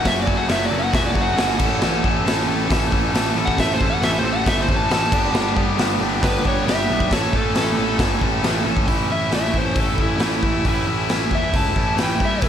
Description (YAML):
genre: garage rock duo or trio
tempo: 136 BPM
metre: 4/4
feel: straight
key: A mixolydian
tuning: A4 = 439 Hz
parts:
  - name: overdriven slide guitar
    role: melody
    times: 0.0-12.5 s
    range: E4 to A5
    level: -24 LUFS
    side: equal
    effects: none
  - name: biting overdriven guitar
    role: riff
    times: 0.0-12.5 s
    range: F#2 to A4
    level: -22 LUFS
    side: equal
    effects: none
  - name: fuzz picked electric bass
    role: bass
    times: 0.0-12.5 s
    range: E1 to G2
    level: -25 LUFS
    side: equal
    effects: overdrive
  - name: raw garage drum kit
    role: drums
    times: 0.0-12.5 s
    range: crash cymbal, hi-hat, kick drum, snare drum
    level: -21 LUFS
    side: equal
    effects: none
room: light reverb, studio ambience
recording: none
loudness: -17 LUFS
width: side -9 dB against mid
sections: 0.0-8.9 A section; 8.9-12.5 B section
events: electric slide guitar solo 8.9-12.5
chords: 0.0 F#m; 1.6 A; 5.1 G; 7.1 A